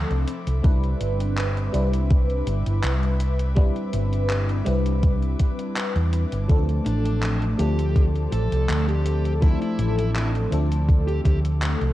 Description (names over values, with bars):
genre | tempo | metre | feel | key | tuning
vaporwave | 82 BPM | 4/4 | swing 53% on 16ths | C major | A4 = 441 Hz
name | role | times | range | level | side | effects
FM electric piano with soft pad layer | accompaniment | 0.0-11.9 s | F3 to B4 | -27 LUFS | left 1 dB | phaser, analog chorus, analog delay
warm chamber string section | sustained chords | 0.0-11.9 s | C4 to D6 | -39 LUFS | left 2 dB | none
hollow-body short-scale fingered electric bass | bass | 0.0-11.9 s | G1 to E2 | -22 LUFS | equal | tube saturation
gated 80s digital drum machine | drums | 0.1-11.9 s | handclaps, hi-hat | -32 LUFS | equal | gated reverb, overdrive
electronic kick drum | drums | 0.6-11.4 s | none | -19 LUFS | equal | overdrive
dark smooth lead guitar | melody | 6.9-11.4 s | D4 to A4 | -32 LUFS | left 1 dB | overdrive, tape echo
room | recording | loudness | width
little or no reverb | dark, warm production, cassette tape | -20 LUFS | side -15 dB against mid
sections
0.0-11.9 A section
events
none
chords
0.3 Cmaj9; 6.5 Dm7